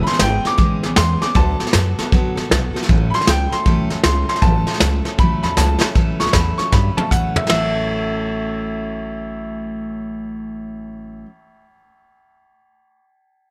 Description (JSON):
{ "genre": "rockabilly", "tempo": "156 BPM", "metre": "4/4", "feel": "swing 64% on 8ths", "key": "A major", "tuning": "A4 = 439 Hz", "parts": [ { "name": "bright upright piano", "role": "melody", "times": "0.0-11.2 s", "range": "E5 to D6", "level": "-25 LUFS", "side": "equal", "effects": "analog delay" }, { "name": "picked steel-string acoustic guitar", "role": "accompaniment", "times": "0.0-11.3 s", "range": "A2 to A4", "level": "-26 LUFS", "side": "equal", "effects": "none" }, { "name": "upright bass", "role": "bass", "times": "0.0-11.2 s", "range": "G#1 to A2", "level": "-24 LUFS", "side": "equal", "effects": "none" }, { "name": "vintage brush drum kit", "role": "drums", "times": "0.1-7.6 s", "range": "hi-hat, kick drum, ride cymbal, snare drum, toms", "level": "-21 LUFS", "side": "equal", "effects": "none" } ], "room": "little or no reverb", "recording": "none", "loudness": "-18 LUFS", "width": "mono", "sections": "0.0-6.0 A section; 6.0-7.5 B section; 7.5-10.6 C section", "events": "drum fill 5.6-6.0, 6.7-7.5", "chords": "0.0 E6; 1.4 D6; 2.9 A6" }